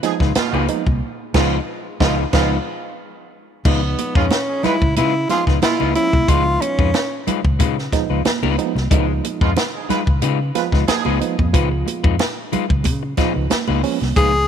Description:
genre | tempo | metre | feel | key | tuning
funk | 91 BPM | 4/4 | straight | Db mixolydian | A4 = 441 Hz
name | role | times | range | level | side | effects
clear horn section | second line | 0.0-11.1 s | Cb3 to Cb5 | -27 LUFS | right 10 dB | none
electric guitar at the edge of break-up | accompaniment | 0.0-14.4 s | Ab3 to Cb5 | -24 LUFS | left 14 dB | none
barky reed electric piano | stabs | 0.0-14.5 s | F3 to F4 | -25 LUFS | right 10 dB | overdrive, fast tremolo
compact cocktail drum kit | drums | 0.0-14.3 s | crash cymbal, hi-hat, kick drum, snare drum | -20 LUFS | equal | none
congas | percussion | 0.0-14.2 s | none | -27 LUFS | right 10 dB | none
vintage muted fingered electric bass | bass | 0.2-14.4 s | C2 to Db3 | -20 LUFS | equal | none
breathy tenor saxophone | melody | 3.7-7.3, 14.2-14.5 s | Cb4 to Ab4 | -19 LUFS | left 1 dB | none
room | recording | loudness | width
light reverb, studio ambience | 1960s-style stereo with parts hard left and right | -16 LUFS | side -8 dB against mid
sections
0.0-3.7 A section; 3.7-14.5 B section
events
band accent 1.0-3.7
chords
0.0 Db9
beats
0.36 | 1.02 1.68 2.33 2.99 | 3.65 4.31 4.97 5.62 | 6.28 6.94 7.60 8.25 | 8.91 9.57 10.22 10.88 | 11.54 12.20 12.85 13.51 | 14.16

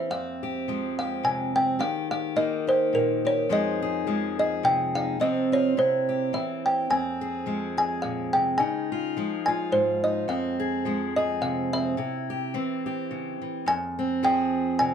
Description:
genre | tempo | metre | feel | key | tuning
acoustic folk duo or small band | 106 BPM | 3/4 | swing 55% on 8ths | F minor | A4 = 440 Hz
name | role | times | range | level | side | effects
kalimba | melody | 0.0-14.9 s | Bb4 to Ab5 | -25 LUFS | right 1 dB | none
fingerpicked steel-string acoustic guitar | accompaniment | 0.0-14.9 s | F2 to Ab4 | -27 LUFS | left 1 dB | none
room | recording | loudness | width
moderate small room reverb, RT60 0.5 s | none | -23 LUFS | side -8 dB against mid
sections
0.1-13.7 A section; 13.7-14.9 B section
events
none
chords
0.1 Fmadd9; 1.8 Eb; 3.5 Fm7; 5.2 Csus4; 5.8 C; 6.9 Fm; 8.6 Dbadd9; 10.3 Fm; 12.0 C; 13.7 Fm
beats
| 0.10 0.67 1.24 | 1.80 2.37 2.94 | 3.50 4.07 4.64 | 5.20 5.77 6.34 | 6.90 7.47 8.03 | 8.60 9.16 9.73 | 10.29 10.86 11.42 | 11.99 12.55 13.11 | 13.68 14.24 14.80

